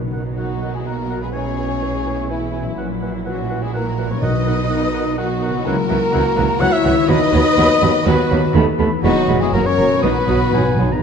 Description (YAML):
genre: classical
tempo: 124 BPM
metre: 3/4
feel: straight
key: B major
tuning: A4 = 438 Hz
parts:
  - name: rich studio viola section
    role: accompaniment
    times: 0.0-10.9 s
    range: F#3 to E4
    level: -25 LUFS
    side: right 2 dB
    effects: none
  - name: concert harp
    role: arpeggios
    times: 0.0-11.0 s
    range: F#2 to A4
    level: -26 LUFS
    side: left 7 dB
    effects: none
  - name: clear symphonic double bass section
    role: bass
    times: 0.0-10.9 s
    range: E1 to D#2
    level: -24 LUFS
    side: right 4 dB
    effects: none
  - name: rich symphonic cello section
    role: bass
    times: 0.0-10.9 s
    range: D#2 to C#3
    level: -24 LUFS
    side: right 4 dB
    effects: none
  - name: timpani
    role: percussion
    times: 0.0-0.6, 4.2-4.9, 10.0-11.0 s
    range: B2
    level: -23 LUFS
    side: equal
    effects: none
  - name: warm oboe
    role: second line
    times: 0.1-11.0 s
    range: F#5 to D#6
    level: -31 LUFS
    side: equal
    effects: none
  - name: mellow bassoon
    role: accompaniment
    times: 0.1-10.9 s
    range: D#3 to A3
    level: -28 LUFS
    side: right 2 dB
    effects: none
  - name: warm symphonic violin section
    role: melody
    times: 0.4-11.0 s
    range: C#4 to C#5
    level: -26 LUFS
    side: left 5 dB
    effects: none
  - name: mellow hollow concert flute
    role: second line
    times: 0.4-11.0 s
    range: E5 to F#6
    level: -26 LUFS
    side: left 2 dB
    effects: none
  - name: warm clarinet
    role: second line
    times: 0.4-11.0 s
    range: E4 to F#5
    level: -24 LUFS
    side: equal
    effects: none
  - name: warm symphonic violin section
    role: second line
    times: 0.4-11.0 s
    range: E4 to F#5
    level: -27 LUFS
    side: left 3 dB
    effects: none
  - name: mellow French horn section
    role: sustained chords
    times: 0.4-11.0 s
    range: E3 to F#4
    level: -23 LUFS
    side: left 2 dB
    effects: none
room: wet scoring stage reverb, RT60 1.7 s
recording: dark, warm production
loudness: -15 LUFS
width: side -6 dB against mid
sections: 0.0-11.0 A section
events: timpani fill 10.0-11.0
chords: 0.0 B; 1.3 C#m7/B; 2.8 F#7/A#; 4.2 B; 5.7 F#7/C#; 7.1 B/D#; 8.6 B7/D#; 9.0 E; 9.5 F#; 10.0 B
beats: 0.38 0.86 | 1.34 1.83 2.31 | 2.79 3.27 3.75 | 4.22 4.71 5.18 | 5.66 6.13 6.61 | 7.09 7.58 8.06 | 8.55 9.04 9.54 | 10.03 10.53